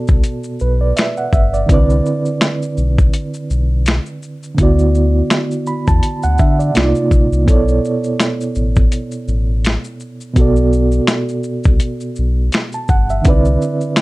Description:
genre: lo-fi hip hop.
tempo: 83 BPM.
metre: 4/4.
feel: swing 56% on 16ths.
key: unclear.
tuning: A4 = 440 Hz.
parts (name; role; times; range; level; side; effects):
reed electric piano; accompaniment; 0.0-14.0 s; B2 to B5; -18 LUFS; right 2 dB; fast tremolo, plate reverb.
sub bass with octave; bass; 0.1-13.6 s; G1 to D3; -15 LUFS; equal; none.
dusty soul sampler-style drum kit; drums; 0.1-14.0 s; finger snaps, hi-hat, kick drum, shaker, snare drum; -14 LUFS; equal; vintage 12-bit sampler grit.
room: light reverb.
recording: none.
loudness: -13 LUFS.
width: side -20 dB against mid.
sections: 0.0-14.0 A section.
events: none.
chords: 0.0 Gmaj13; 1.7 Cmaj9; 4.6 D6; 6.8 Cm11; 7.5 Bm11; 10.4 Gmaj9; 13.3 Cmaj9.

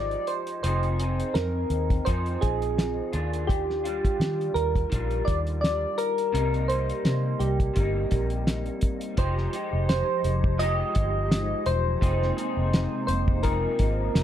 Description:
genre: indie pop, bedroom pop.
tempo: 84 BPM.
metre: 4/4.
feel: swing 55% on 16ths.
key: F dorian.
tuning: A4 = 440 Hz.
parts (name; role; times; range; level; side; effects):
soft electric-piano-like synth keys; melody; 0.0-14.2 s; G4 to Eb5; -28 LUFS; right 1 dB; wide subtle chorus.
electric guitar through a small old amp; accompaniment; 0.0-14.2 s; C3 to Ab4; -32 LUFS; left 2 dB; ensemble chorus, vibrato effect.
vintage muted fingered electric bass; bass; 0.0-14.2 s; E1 to Eb3; -27 LUFS; equal; none.
cloth-damped thuddy drum kit; drums; 0.1-14.2 s; hi-hat, kick drum, snare drum; -26 LUFS; equal; none.
hollow soft pad; sustained chords; 9.4-14.2 s; C3 to G4; -34 LUFS; equal; ensemble chorus.
room: light reverb.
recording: none.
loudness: -23 LUFS.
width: side -10 dB against mid.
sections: 0.0-9.2 A section; 9.2-14.2 B section.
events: none.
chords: 0.0 Fm9; 0.7 Bb9sus4/F; 3.1 Ebmaj9; 6.3 Cm7; 9.2 Fm9; 12.0 Bb9sus4/F.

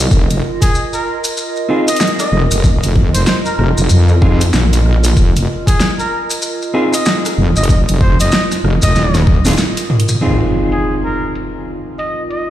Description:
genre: glitch hop.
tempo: 95 BPM.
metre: 4/4.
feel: swing 60% on 16ths.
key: F minor.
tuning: A4 = 438 Hz.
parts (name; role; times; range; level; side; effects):
wobble bass; bass; 0.0-9.6 s; Eb1 to F2; -12 LUFS; equal; chorus.
warbly tape-like pad; texture; 0.0-12.5 s; F4 to Eb5; -23 LUFS; right 3 dB; chorus, built-in reverb, sidechain pumping.
electronic kick drum; drums; 0.1-9.4 s; none; -12 LUFS; equal; overdrive.
maracas; percussion; 0.1-10.2 s; none; -24 LUFS; left 2 dB; none.
pop drum kit; drums; 0.3-12.4 s; crash cymbal, hi-hat, rim click, snare drum, toms; -17 LUFS; equal; overdrive, low-pass filter on hats, low-pass filter on snare, low-pass filter on toms, low-pass filter on cymbals, low-pass filter on room.
mellow trumpet; melody; 0.6-12.5 s; Ab4 to Eb5; -21 LUFS; equal; ping-pong delay.
mellow electric guitar; stabs; 1.7-12.5 s; C4 to Ab4; -20 LUFS; equal; sidechain pumping, ping-pong delay.
impact; sound effects; 10.2-12.5 s; none; -21 LUFS; equal; none.
room: light reverb, digital ambience.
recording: played on a big sound system in a bare room, stone room reverb.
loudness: -11 LUFS.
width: side -12 dB against mid.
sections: 0.0-10.2 A section; 10.2-12.5 B section.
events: drum fill 9.0-10.2; break 9.6-10.2; band accent 9.6-9.9; impact 10.2-12.5.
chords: 0.0 F7(no3); 10.2 Fm7.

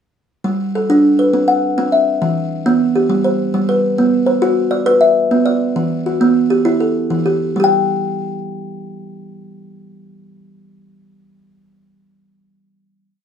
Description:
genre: southern african traditional, mbira-style interlocking cycle.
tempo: 134 BPM (dotted quarters).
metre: 12/8.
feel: straight.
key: unclear.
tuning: A4 = 440 Hz.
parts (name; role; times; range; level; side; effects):
kalimba; solo; 0.4-11.2 s; E3 to G5; -13 LUFS; equal; none.
room: moderate studio reverb, RT60 0.6 s.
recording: none.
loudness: -13 LUFS.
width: side -8 dB against mid.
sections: 0.4-7.6 A section; 7.6-11.2 final note.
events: none.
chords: 0.4 G; 1.3 C; 2.2 Em; 3.1 G; 4.0 Bm; 5.8 Em; 7.6 N.C..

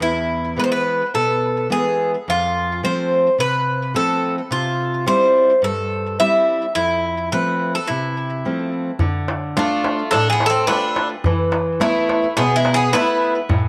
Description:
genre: greek folk, Greek bouzouki band.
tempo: 107 BPM.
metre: 4/4.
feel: straight.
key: E phrygian dominant.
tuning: A4 = 440 Hz.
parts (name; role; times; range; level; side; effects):
Greek bouzouki; melody; 0.0-13.3 s; E4 to E5; -21 LUFS; equal; tape echo.
fingerpicked steel-string acoustic guitar; accompaniment; 0.0-13.7 s; E2 to F4; -24 LUFS; equal; none.
darbuka; percussion; 9.0-13.6 s; none; -25 LUFS; equal; none.
Greek bouzouki; second line; 9.6-13.3 s; G#3 to E4; -27 LUFS; equal; none.
room: moderate spring reverb, RT60 1.6 s, studio reverb.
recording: none.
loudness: -19 LUFS.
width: mono.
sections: 0.0-9.0 A section; 9.0-13.7 B section.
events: none.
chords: 0.0 E; 2.3 F; 4.5 C; 6.8 F; 9.0 Dm; 11.3 Esus4.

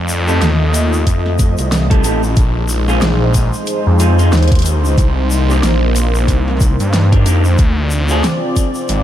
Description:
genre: glitch hop.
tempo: 92 BPM.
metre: 4/4.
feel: swing 59% on 16ths.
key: C minor.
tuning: A4 = 440 Hz.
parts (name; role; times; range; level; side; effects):
dark analog pad; sustained chords; 0.0-9.0 s; Ab3 to Eb5; -20 LUFS; equal; chorus, sidechain pumping.
phased detuned saw bass; bass; 0.0-9.0 s; Ab1 to G2; -14 LUFS; equal; phaser.
tube shaker; percussion; 0.1-9.0 s; none; -29 LUFS; left 5 dB; none.
electric guitar through a small old amp; stabs; 0.3-8.2 s; Bb3 to A4; -23 LUFS; equal; sidechain pumping, ping-pong delay.
pop drum kit; drums; 0.4-9.0 s; hi-hat, snare drum; -22 LUFS; equal; overdrive.
electronic kick drum; drums; 1.1-8.7 s; none; -13 LUFS; equal; overdrive.
room: light reverb.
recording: vinyl crackle.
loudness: -11 LUFS.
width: side -11 dB against mid.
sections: 0.0-9.0 A section.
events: none.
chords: 0.0 F7; 2.4 Bb9sus4; 5.0 Cm7; 7.6 Dm7b5.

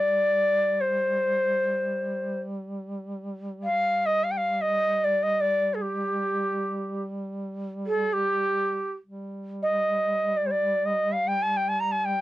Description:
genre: Arabic maqam ensemble.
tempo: free time.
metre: none.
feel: none.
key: G maqam bayati.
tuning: A4 = 440 Hz.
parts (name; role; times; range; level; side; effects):
breathy bright ney; melody; 0.0-12.2 s; G4 to Bb5; -23 LUFS; equal; none.
mellow duduk; drone; 0.0-12.2 s; G3; -34 LUFS; equal; stereo widening.
room: light reverb.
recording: cassette tape.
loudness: -24 LUFS.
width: side -15 dB against mid.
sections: 0.0-9.1 A section; 9.1-12.2 A section.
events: none.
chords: none.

